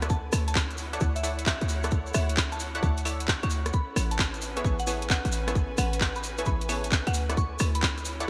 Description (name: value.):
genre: UK garage, two-step garage.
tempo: 132 BPM.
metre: 4/4.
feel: swing 66% on 16ths.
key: unclear.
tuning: A4 = 440 Hz.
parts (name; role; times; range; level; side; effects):
punchy chord stab; stabs; 0.0-8.3 s; B3 to F#5; -38 LUFS; equal; chorus, cassette tape.
short 808-style bass; bass; 0.0-8.3 s; A1 to D2; -32 LUFS; equal; none.
garage drum kit; drums; 0.0-8.3 s; claves, handclaps, hi-hat, rim click; -33 LUFS; equal; gated reverb.
maracas; percussion; 0.0-8.3 s; none; -41 LUFS; equal; none.
rich studio string section; texture; 0.0-8.3 s; C#4 to G#5; -41 LUFS; equal; sidechain pumping.
soft synth bell; melody; 0.1-7.9 s; E5 to C#6; -40 LUFS; equal; chorus, delay.
electronic kick drum; drums; 0.1-7.9 s; none; -29 LUFS; equal; none.
room: light reverb.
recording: bright 1980s-style digital production.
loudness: -27 LUFS.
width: mono.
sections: 0.0-8.3 A section.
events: none.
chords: 0.0 Dmaj9; 3.7 Amaj9; 7.1 Dmaj9.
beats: | 0.10 0.55 1.01 1.46 | 1.92 2.37 2.83 3.28 | 3.74 4.19 4.64 5.10 | 5.55 6.01 6.46 6.92 | 7.37 7.83 8.28.